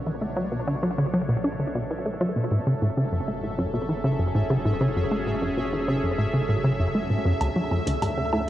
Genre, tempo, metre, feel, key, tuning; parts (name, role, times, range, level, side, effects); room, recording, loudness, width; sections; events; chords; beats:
ambient, sequencer-driven space music; 98 BPM; 4/4; straight; F# minor; A4 = 440 Hz
phased analog pad; sustained chords; 0.0-8.5 s; B2 to E5; -30 LUFS; equal; phaser, chorus
warm sub bass; bass; 0.0-8.5 s; F#1 to D2; -41 LUFS; equal
pulsing gated texture; texture; 0.0-8.5 s; E5; -38 LUFS; right 1 dB; chorus, built-in reverb
plucky analog bass; riff; 0.1-8.4 s; D2 to D4; -24 LUFS; equal; tape echo
electronic hi-hat and woodblock; percussion; 7.4-8.5 s; -32 LUFS; right 1 dB; tape echo
wet huge ambient reverb, RT60 7.4 s; worn, warbling old tape, cassette tape, warbly pitch drift; -23 LUFS; side -13 dB against mid
0.0-8.5 A section
fade-in on analog synth pad 0.0-8.5; fade-in on sub bass 0.0-8.5; fade-in on synth texture 0.0-8.5; filter sweep on analog synth bass 0.0-8.5
0.0 Bm7; 2.5 F#m7; 7.4 D5
| 0.07 0.68 1.29 1.90 | 2.52 3.13 3.74 4.35 | 4.96 5.58 6.19 6.80 | 7.41 8.03